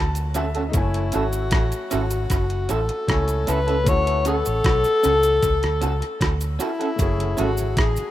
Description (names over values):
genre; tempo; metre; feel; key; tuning
lovers rock reggae; 77 BPM; 4/4; straight; F# minor; A4 = 440 Hz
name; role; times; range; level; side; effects
warm alto saxophone; melody; 0.0-8.1 s; D#4 to C#5; -23 LUFS; left 2 dB; tape echo
clear grand piano; accompaniment; 0.0-8.1 s; A3 to A5; -31 LUFS; left 4 dB; tape echo
vintage muted fingered electric bass; bass; 0.0-8.0 s; F#1 to D2; -24 LUFS; equal; none
detuned 8-bit digital drum machine; drums; 0.1-8.1 s; hi-hat, kick drum, rim click; -24 LUFS; equal; overdrive, tape echo
cabasa; percussion; 0.2-8.1 s; none; -38 LUFS; right 4 dB; none
electric guitar through a small old amp; stabs; 0.3-7.5 s; C#4 to A4; -28 LUFS; right 4 dB; analog chorus, tape echo
mellow tonewheel organ; accompaniment; 7.2-8.0 s; F#2 to A3; -36 LUFS; right 3 dB; none
room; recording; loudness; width
light reverb, digital ambience; rough home demo mix; -19 LUFS; side -13 dB against mid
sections
0.0-8.1 A section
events
grand piano fill 0.0-0.7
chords
0.0 Dmaj7; 0.7 F#m7; 3.9 Dmaj7; 7.0 F#m7